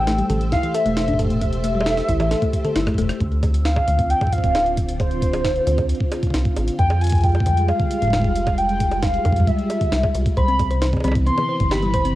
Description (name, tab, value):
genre	IDM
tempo	134 BPM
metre	4/4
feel	straight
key	D dorian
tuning	A4 = 438 Hz
part	warbly nostalgic lead	melody	0.0-12.2 s	C5 to C6	-23 LUFS	equal	wide subtle chorus, cassette tape, tape echo
part	soft string machine	sustained chords	0.0-12.2 s	C3 to C5	-27 LUFS	equal	ensemble chorus, sidechain pumping, cassette tape
part	rubbery square bass	bass	0.0-12.2 s	D1 to F2	-21 LUFS	equal	none
part	flickering grainy texture	texture	0.0-3.2 s	E6	-41 LUFS	right 2 dB	built-in reverb, cassette tape
part	thumb-piano-like synth pluck	arpeggios	0.1-3.1, 10.4-12.2 s	A2 to C5	-24 LUFS	left 2 dB	chorus, cassette tape, tape echo
part	jungle sampler-style drum kit	drums	0.1-12.1 s	bongos, hi-hat, rim click, snare drum, toms	-28 LUFS	right 1 dB	studio reverb, cassette tape
part	electronic kick drum	drums	0.5-12.0 s	none	-22 LUFS	equal	studio reverb, cassette tape
room	moderate booth ambience, RT60 0.2 s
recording	home recording on cassette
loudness	-17 LUFS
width	side -15 dB against mid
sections	0.0-3.2 A section; 3.2-12.2 A section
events	drum fill 2.8-3.2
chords	0.0 Am7; 3.2 Dm7; 6.8 Fmadd9; 10.4 Cmaj7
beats	0.07 0.52 0.97 | 1.41 1.86 2.31 2.76 | 3.21 3.65 4.10 4.55 | 5.00 5.44 5.89 6.34 | 6.79 7.24 7.68 8.13 | 8.58 9.03 9.47 9.92 | 10.37 10.82 11.27 11.71